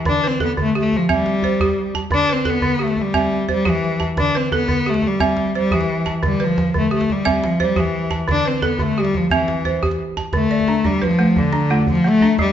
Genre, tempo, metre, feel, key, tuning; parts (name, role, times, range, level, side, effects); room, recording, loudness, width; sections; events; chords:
west african traditional, West African string and xylophone music; 117 BPM (dotted quarters); 12/8; straight; D dorian; A4 = 438 Hz
balafon; arpeggios; 0.0-12.5 s; D3 to A5; -20 LUFS; right 2 dB
rich cello; melody; 0.1-12.5 s; D3 to D4; -18 LUFS; left 2 dB
djembe; percussion; 0.1-12.5 s; -26 LUFS; right 2 dB
wet recital hall reverb, RT60 1.4 s; recorded in a church or concert hall, nothing above 7.5 kHz; -16 LUFS; side -9 dB against mid
0.0-10.3 A section; 10.3-12.5 B section
0.1 D5; 1.1 C; 2.1 D5; 3.1 C; 4.2 D5; 5.2 C; 6.2 Dm; 7.3 C; 8.3 D5; 9.3 C; 10.3 Dm